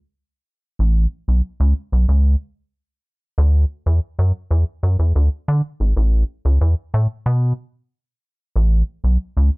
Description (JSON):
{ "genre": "funk", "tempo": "93 BPM", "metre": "4/4", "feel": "straight", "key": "unclear", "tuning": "A4 = 441 Hz", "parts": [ { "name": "rubbery square bass", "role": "solo", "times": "0.8-9.5 s", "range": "G#1 to D3", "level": "-14 LUFS", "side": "equal", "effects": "none" } ], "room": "light reverb", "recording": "dry, close 1970s-style studio recording", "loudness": "-16 LUFS", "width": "side -29 dB against mid", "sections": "0.0-9.6 A section", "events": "none", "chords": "none" }